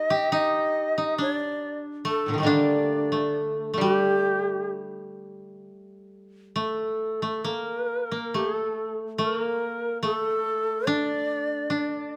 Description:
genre	japanese traditional, Japanese chamber music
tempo	64-73 BPM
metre	4/4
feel	rubato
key	G hirajoshi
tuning	A4 = 440 Hz
part	bright reedy long shakuhachi	melody	0.0-12.1 s	G4 to Eb5	-30 LUFS	equal	none
part	koto	second line	0.0-12.2 s	A2 to G4	-29 LUFS	equal	none
part	koto	accompaniment	0.0-6.5 s	D3 to G3	-30 LUFS	equal	none
room	moderate recital hall reverb, RT60 1.5 s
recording	close, detailed microphones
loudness	-26 LUFS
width	mono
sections	0.0-5.7 A section; 5.7-12.2 B section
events	none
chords	none

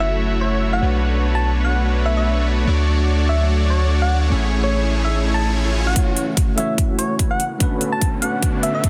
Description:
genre	future bass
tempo	146 BPM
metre	4/4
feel	swing 56% on 16ths, half-time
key	F# minor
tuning	A4 = 440 Hz
part	soft struck synth lead	melody	0.0-8.9 s	C#5 to A5	-27 LUFS	equal	chorus, sidechain pumping, delay
part	tine electric piano	accompaniment	0.0-8.9 s	A3 to C#6	-29 LUFS	equal	overdrive, sidechain pumping, digital delay
part	airy breathy pad	sustained chords	0.0-8.9 s	C#3 to C#5	-33 LUFS	equal	none
part	supersaw chords	riff	0.0-8.9 s	D3 to F#5	-27 LUFS	equal	sidechain pumping, low-pass filter
part	long sustained 808-style bass	bass	0.0-5.9 s	F#1 to D2	-21 LUFS	equal	sidechain pumping
part	riser	sound effects	4.1-8.9 s	none	-36 LUFS	equal	none
part	electronic hi-hat	drums	6.0-8.9 s	none	-27 LUFS	equal	low-pass filter on hats
part	electronic kick drum	drums	6.0-8.9 s	none	-21 LUFS	equal	none
room	light reverb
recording	dense, heavily limited modern master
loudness	-19 LUFS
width	mono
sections	0.0-6.0 A section; 6.0-8.9 B section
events	build-up 6.0-8.9; riser 6.0-8.9; filter sweep on supersaw synth 6.0-8.9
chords	0.0 F#m7; 0.8 Bm9; 2.7 Dmaj7; 4.3 Amaj7; 6.0 F#m7; 7.4 Bm9

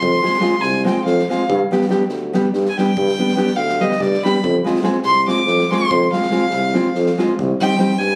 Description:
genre	balkan folk, Balkan wedding band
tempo	285 BPM (eighths)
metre	7/8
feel	straight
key	F dorian sharp4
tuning	A4 = 442 Hz
part	warm violin	melody	0.0-8.2 s	D5 to D6	-22 LUFS	equal	none
part	warm tuba	bass	0.0-8.2 s	C2 to G2	-21 LUFS	equal	none
part	street-band drum kit	percussion	0.0-8.0 s	kick drum, snare drum	-34 LUFS	equal	none
part	nylon-string guitar	accompaniment	0.2-7.9 s	G3 to Ab4	-21 LUFS	equal	none
room	light reverb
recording	recorded on a phone in the room, club reverb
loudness	-17 LUFS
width	mono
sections	0.0-8.2 A section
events	violin solo 0.0-8.2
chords	0.0 Fm; 1.5 G; 4.4 Fm; 7.4 Cm

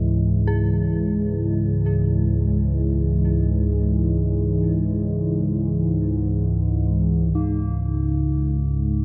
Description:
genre	dark ambient drone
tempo	free time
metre	none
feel	none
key	C# minor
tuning	A4 = 440 Hz
part	dark analog pad	sustained chords	0.0-9.0 s	E3 to D#5	-27 LUFS	equal	chorus
part	dark detuned synth bell	arpeggios	0.0-7.3 s	G#4	-38 LUFS	equal	chorus, tape echo
part	analog drone	drone	0.0-9.0 s	C#2 to G#2	-23 LUFS	equal	lush chorus
part	quartz singing bowl	texture	0.0-9.0 s	D#4 to D#5	-33 LUFS	equal	none
room	wet cathedral reverb, RT60 5.7 s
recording	none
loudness	-21 LUFS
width	mono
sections	0.0-7.3 A section; 7.3-9.0 B section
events	fade-out on synth bell 0.0-7.3; filter sweep on synth drone 0.0-7.3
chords	0.0 C#madd9

